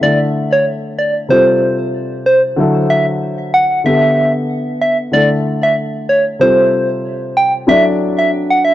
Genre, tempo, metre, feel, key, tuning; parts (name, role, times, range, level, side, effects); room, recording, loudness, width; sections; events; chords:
dancehall; 94 BPM; 4/4; swing 56% on 16ths; D major; A4 = 440 Hz
soft struck synth lead; melody; 0.0-8.7 s; C5 to G5; -13 LUFS; equal; chorus, tremolo, tape echo
dark baby grand piano; accompaniment; 0.0-8.7 s; C3 to D5; -16 LUFS; left 1 dB
studio reverb; dry, gritty hardware recording, transformer saturation; -11 LUFS; side -13 dB against mid
0.0-7.7 A section; 7.7-8.7 B section
0.0 Asus4; 1.3 Fadd9; 2.6 Dadd9; 3.9 Gadd9; 5.1 Asus4; 6.4 Fadd9; 7.7 Dadd9